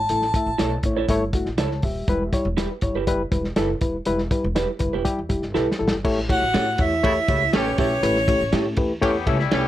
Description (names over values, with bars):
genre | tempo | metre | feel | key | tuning
uptempo 1960s-style soul | 121 BPM | 4/4 | straight | A mixolydian | A4 = 440 Hz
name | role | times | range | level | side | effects
warm harmonica | melody | 0.0-0.8, 6.3-8.7 s | C#5 to A5 | -22 LUFS | equal | none
upright bass | bass | 0.0-9.7 s | D#1 to A2 | -28 LUFS | equal | none
reed electric piano | accompaniment | 0.1-9.7 s | G3 to A5 | -25 LUFS | left 2 dB | overdrive
warm soul drum kit | drums | 0.1-9.6 s | crash cymbal, hi-hat, kick drum, ride cymbal, snare drum | -25 LUFS | equal | none
electric guitar through a small old amp | stabs | 0.6-9.6 s | C#4 to C#5 | -27 LUFS | right 8 dB | none
vibraphone with medium hard mallets | second line | 6.3-8.7 s | C#4 to F#4 | -31 LUFS | right 2 dB | none
clear horn section | second line | 7.0-9.7 s | C#3 to G4 | -28 LUFS | right 1 dB | none
electric guitar through a small old amp | riff | 9.0-9.7 s | G3 to A4 | -26 LUFS | left 9 dB | harmonic tremolo
room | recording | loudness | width
moderate studio reverb, RT60 0.5 s | none | -19 LUFS | side -13 dB against mid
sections
0.0-6.0 A section; 6.0-9.7 B section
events
drum fill 5.6-6.0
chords
0.0 A; 6.0 A7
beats
| 0.10 0.59 1.09 1.58 | 2.08 2.58 3.07 3.57 | 4.07 4.56 5.06 5.55 | 6.05 6.55 7.04 7.54 | 8.03 8.53 9.03 9.52